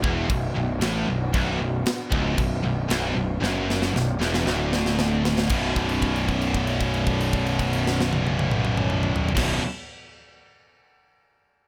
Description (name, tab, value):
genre	heavy metal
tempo	115 BPM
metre	4/4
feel	straight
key	B minor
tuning	A4 = 440 Hz
part	rich chamber string section	sustained chords	0.0-9.6 s	B3 to D5	-39 LUFS	equal	none
part	high-gain distorted guitar	riff	0.0-9.6 s	B1 to B2	-31 LUFS	equal	distortion
part	scooped high-gain guitar	riff	0.0-9.6 s	B1 to B2	-32 LUFS	equal	distortion
part	scooped high-gain guitar	riff	0.0-9.6 s	B1 to B2	-34 LUFS	equal	none
part	fuzz picked electric bass	bass	0.0-9.6 s	B0 to A1	-29 LUFS	equal	overdrive
part	tight metal drum kit	drums	0.0-9.5 s	crash cymbal, kick drum, snare drum, toms	-30 LUFS	equal	none
room	little or no reverb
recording	none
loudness	-24 LUFS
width	mono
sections	0.0-5.5 A section; 5.5-9.7 B section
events	drum fill 3.4-5.5; held note 5.5-9.4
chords	0.0 Bm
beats	0.30 0.82 | 1.34 1.86 2.38 2.90 | 3.42 3.94 4.46 4.99 | 5.51 6.03 6.55 7.07 | 7.59 8.11 8.64 9.16